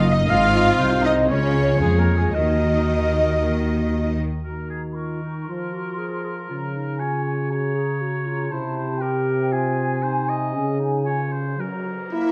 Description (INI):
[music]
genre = cinematic, heroic adventure film score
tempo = 117 BPM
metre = 4/4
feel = straight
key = Eb dorian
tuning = A4 = 440 Hz
[part]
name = warm symphonic violin section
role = melody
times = 0.0-4.1, 12.1-12.3 s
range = Ab4 to F5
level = -35 LUFS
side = equal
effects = none
[part]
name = mellow hollow flute section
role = second line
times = 0.0-12.3 s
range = Ab4 to Db6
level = -31 LUFS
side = equal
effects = none
[part]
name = rich studio violin section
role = second line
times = 0.0-4.1 s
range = Ab4 to F5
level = -37 LUFS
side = equal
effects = none
[part]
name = warm clarinet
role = second line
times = 0.0-12.3 s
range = Db4 to F5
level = -33 LUFS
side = equal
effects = none
[part]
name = warm oboe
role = second line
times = 0.0-12.3 s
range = Ab4 to Eb5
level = -34 LUFS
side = equal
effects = none
[part]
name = rich symphonic viola section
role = accompaniment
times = 0.0-4.2 s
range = Ab3 to F4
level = -29 LUFS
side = equal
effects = none
[part]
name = mellow French horn section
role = sustained chords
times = 0.0-12.3 s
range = C3 to Gb4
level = -27 LUFS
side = equal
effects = none
[part]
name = warm trumpet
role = stabs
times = 0.0-4.2, 12.1-12.3 s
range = Bb3 to F5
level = -29 LUFS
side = equal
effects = none
[part]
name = rich symphonic cello section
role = bass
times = 0.0-4.2 s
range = Gb2 to F3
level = -28 LUFS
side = equal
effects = none
[part]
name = rich symphonic double bass section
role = bass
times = 0.0-4.2 s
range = Gb1 to F2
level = -25 LUFS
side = equal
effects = none
[sound]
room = wet recital hall reverb, RT60 1.5 s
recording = dark, warm production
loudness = -22 LUFS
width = mono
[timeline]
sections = 0.0-4.4 A section; 4.4-12.3 B section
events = none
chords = 0.3 Ab; 1.3 Db; 2.3 Ebm; 5.5 Fm; 6.5 Db; 8.5 C7; 10.5 Db; 11.6 Gb7